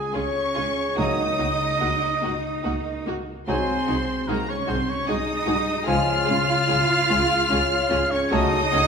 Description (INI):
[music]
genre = classical, slow romantic movement for symphony orchestra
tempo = 74 BPM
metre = 3/4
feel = uneven beats, rubato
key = Db major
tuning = A4 = 440 Hz
[part]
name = warm symphonic violin section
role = melody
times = 0.0-8.9 s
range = Ab5 to F6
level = -28 LUFS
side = left 2 dB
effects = none
[part]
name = mellow oboe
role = second line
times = 0.0-8.9 s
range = Ab4 to F5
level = -29 LUFS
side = right 2 dB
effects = none
[part]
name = concert harp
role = arpeggios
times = 0.0-8.9 s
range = C3 to Db5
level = -30 LUFS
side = left 5 dB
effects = none
[part]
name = clear trumpet section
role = stabs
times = 0.0-8.9 s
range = Ab4 to F5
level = -28 LUFS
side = right 2 dB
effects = none
[part]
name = warm symphonic cello section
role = bass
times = 0.0-8.9 s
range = Ab3 to F4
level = -28 LUFS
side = right 2 dB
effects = none
[part]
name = warm symphonic violin section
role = second line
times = 0.1-8.8 s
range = F4 to Db5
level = -33 LUFS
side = left 3 dB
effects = none
[part]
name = warm symphonic viola section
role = accompaniment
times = 0.1-8.8 s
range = Ab3 to Eb4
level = -31 LUFS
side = right 1 dB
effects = none
[part]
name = warm chamber double bass section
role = bass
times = 0.1-8.8 s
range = C2 to Db2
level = -32 LUFS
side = right 2 dB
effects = none
[part]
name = silver concert flute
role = second line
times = 1.0-8.7 s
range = Ab5 to Bb5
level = -30 LUFS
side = left 5 dB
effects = none
[part]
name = clear bassoon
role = accompaniment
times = 1.0-8.6 s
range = F3 to Gb3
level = -31 LUFS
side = right 2 dB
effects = none
[part]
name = warm French horn section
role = sustained chords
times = 1.0-8.6 s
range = Ab3 to Gb4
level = -31 LUFS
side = left 3 dB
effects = none
[part]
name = timpani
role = percussion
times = 1.0-2.2 s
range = Db3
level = -35 LUFS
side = left 1 dB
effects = none
[sound]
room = wet recital hall reverb, RT60 1.5 s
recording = minimal, uncompressed stereo recording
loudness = -20 LUFS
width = side -6 dB against mid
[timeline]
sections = 0.0-8.9 A section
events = none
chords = 0.0 Db; 1.0 Ebm7/Db; 3.5 Ab7/C; 5.9 Db; 8.3 Gbm/Db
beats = 0.14 | 0.98 1.82 2.65 | 3.48 4.29 5.08 | 5.87 6.70 7.51 | 8.32